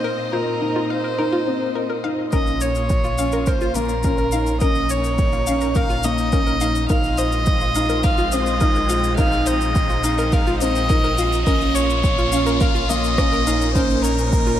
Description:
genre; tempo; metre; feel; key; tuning
piano and strings electronica; 105 BPM; 4/4; straight; Bb minor; A4 = 440 Hz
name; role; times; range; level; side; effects
warm violin; melody; 0.0-14.6 s; Bb4 to F5; -23 LUFS; equal; ping-pong delay, shimmer reverb
dark studio string section; sustained chords; 0.0-14.6 s; Bb2 to Eb5; -28 LUFS; left 1 dB; shimmer reverb
analog pluck; arpeggios; 0.0-14.5 s; F4 to F5; -28 LUFS; left 2 dB; chorus, sidechain pumping, ping-pong delay, shimmer reverb
felt-muted upright piano; riff; 0.3-14.1 s; Bb3 to F4; -24 LUFS; equal; ping-pong delay, shimmer reverb
dark detuned saw bass; bass; 2.3-14.6 s; Bb1; -24 LUFS; equal; sidechain pumping
electronic kick drum; drums; 2.3-14.4 s; none; -20 LUFS; equal; overdrive, studio reverb
electronic shaker and rim click; drums; 2.3-14.6 s; none; -32 LUFS; left 3 dB; overdrive, studio reverb
riser; sound effects; 5.1-14.6 s; none; -31 LUFS; left 1 dB; none
room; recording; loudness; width
moderate concert hall reverb, RT60 2.4 s; none; -17 LUFS; side -11 dB against mid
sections
0.0-2.3 A section; 2.3-14.6 B section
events
build-up 2.3-14.6; riser 5.1-14.6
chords
0.0 Bbsus24; 2.3 Bbm; 6.9 Ab6/Bb; 11.5 Bbm

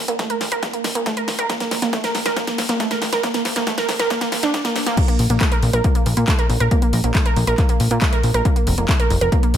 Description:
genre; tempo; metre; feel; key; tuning
uplifting trance; 138 BPM; 4/4; straight; unclear; A4 = 440 Hz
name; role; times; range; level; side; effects
plucky analog bass; bass; 0.0-9.6 s; Eb1 to Bb2; -21 LUFS; left 1 dB; sidechain pumping, high-pass filter
wide unison pluck; arpeggios; 0.1-9.5 s; A3 to Bb4; -21 LUFS; right 2 dB; sidechain pumping, tape echo
big-room dance drum kit; drums; 0.1-9.6 s; crash cymbal, handclaps, hi-hat, snare drum; -24 LUFS; equal; sidechain pumping on hats, high-pass filter on hats, high-pass filter on snare, sidechain pumping on cymbals, high-pass filter on cymbals
electronic kick drum; drums; 0.2-9.4 s; none; -19 LUFS; left 1 dB; high-pass filter on kick
room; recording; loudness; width
light reverb, digital ambience; none; -16 LUFS; side -10 dB against mid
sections
0.0-5.0 A section; 5.0-9.6 B section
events
build-up 0.0-5.0; drum fill 0.0-5.0; drop 5.0-9.6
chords
0.0 Bb5; 1.5 Ebsus2 (rootless); 3.2 N.C.; 8.5 Fsus4

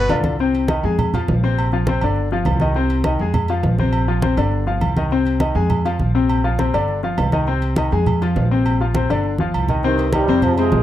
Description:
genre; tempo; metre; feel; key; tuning
latin, salsa; 203 BPM; 4/4; straight; C minor; A4 = 440 Hz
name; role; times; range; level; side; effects
clear concert grand piano; accompaniment; 0.0-10.8 s; C3 to Ab5; -20 LUFS; left 4 dB; none
upright bass; bass; 0.0-10.8 s; G1 to F2; -20 LUFS; right 1 dB; none
congas; percussion; 0.1-10.8 s; none; -23 LUFS; right 1 dB; none
timbales and agogo bells; percussion; 0.1-10.8 s; none; -27 LUFS; right 6 dB; none
mellow trombone section; melody; 9.8-10.8 s; G2 to Ab3; -19 LUFS; right 5 dB; none
room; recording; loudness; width
little or no reverb; dry, close 1970s-style studio recording; -16 LUFS; side -12 dB against mid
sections
0.4-9.8 A section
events
drum fill 9.4-9.8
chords
0.4 Cm; 1.0 Fm; 1.6 Bbsus2; 2.2 G5; 2.8 Cm; 3.3 Fm; 3.9 Bbsus2; 4.5 G5; 5.1 Cm; 5.7 Fm; 6.3 Bbsus2; 6.9 G5; 7.5 Cm; 8.1 Fm; 8.7 Bbsus2; 9.2 G5; 9.8 Cm

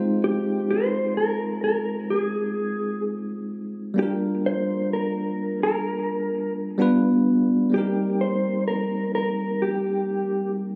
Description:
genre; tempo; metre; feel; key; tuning
R&B; 64 BPM; 4/4; straight; C minor; A4 = 440 Hz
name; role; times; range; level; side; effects
barky tine electric piano; accompaniment; 0.0-10.8 s; G3 to C5; -26 LUFS; equal; none
mellow electric guitar; melody; 0.2-10.5 s; G4 to C5; -28 LUFS; equal; vibrato effect, delay
room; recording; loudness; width
light reverb; recorded on a phone in the room, club reverb; -24 LUFS; mono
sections
0.0-10.8 A section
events
none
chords
0.0 Fm7; 4.0 Gm7; 6.8 G7; 7.7 Cm7

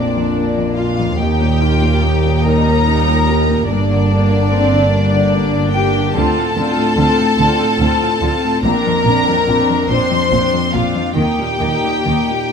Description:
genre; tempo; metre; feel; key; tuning
cinematic, emotional film score for orchestra; 48 BPM (dotted quarters); 6/8; rubato; Bb major; A4 = 439 Hz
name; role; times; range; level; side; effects
dark studio violin section; melody; 0.0-12.5 s; D5 to C6; -21 LUFS; left 2 dB; none
dark studio violin section; second line; 0.0-12.5 s; D4 to C5; -19 LUFS; left 2 dB; none
felt-muted upright piano; accompaniment; 0.0-12.5 s; Bb1 to G4; -20 LUFS; left 5 dB; none
warm studio viola section; accompaniment; 0.0-12.5 s; G3 to F4; -21 LUFS; right 2 dB; none
dark studio cello section; bass; 0.0-12.1 s; Eb2 to Eb3; -20 LUFS; right 1 dB; none
warm studio double bass section; bass; 0.0-12.1 s; G1 to Eb2; -19 LUFS; right 4 dB; none
room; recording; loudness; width
light reverb; close, detailed microphones; -12 LUFS; side -6 dB against mid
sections
0.0-12.5 A section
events
none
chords
0.0 Bbadd9; 1.2 Eb; 3.7 Gm; 6.2 Dm7; 8.6 Bbadd9; 11.2 Eb

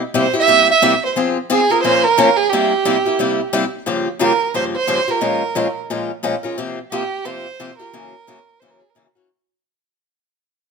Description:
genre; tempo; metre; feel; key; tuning
jazz; 177 BPM; 4/4; swing 60% on 8ths; unclear; A4 = 437 Hz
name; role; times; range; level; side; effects
picked swing-style acoustic guitar; accompaniment; 0.1-9.3 s; Gb2 to Bb4; -19 LUFS; left 3 dB; none
warm violin; melody; 0.2-9.0 s; G4 to E5; -16 LUFS; right 6 dB; none
room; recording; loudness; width
moderate studio reverb, RT60 0.9 s; none; -14 LUFS; side -5 dB against mid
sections
0.0-3.9 A section; 3.9-9.3 B section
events
fade-out 3.9-9.3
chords
0.0 C7; 1.2 Fm; 1.8 Bbm; 2.5 C7; 3.9 Gm7b5; 5.2 Bbm7; 6.6 C7sus4; 7.9 Gb7

